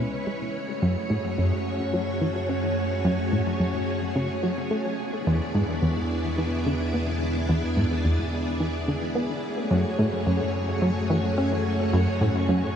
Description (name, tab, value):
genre	ambient, sequencer-driven space music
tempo	108 BPM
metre	4/4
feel	straight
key	unclear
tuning	A4 = 438 Hz
part	string machine, full ensemble	sustained chords	0.0-12.8 s	G#3 to D5	-27 LUFS	equal	ensemble chorus
part	plucky analog bass	riff	0.0-12.6 s	E2 to C#4	-26 LUFS	equal	lush chorus, ping-pong delay
part	round analog bass	bass	0.0-12.8 s	C#2 to F#2	-31 LUFS	equal	none
room	moderate shimmer reverb, RT60 8.7 s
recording	dark, warm production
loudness	-23 LUFS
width	side -8 dB against mid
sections	0.0-12.8 A section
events	filter sweep on analog synth bass 0.0-12.8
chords	0.0 C#m7; 0.5 F#madd9; 5.0 E7; 9.4 F#madd9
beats	| 0.55 1.10 1.66 2.21 | 2.77 3.32 3.88 4.43 | 4.99 5.55 6.10 6.66 | 7.21 7.77 8.32 8.88 | 9.44 9.99 10.55 11.10 | 11.66 12.21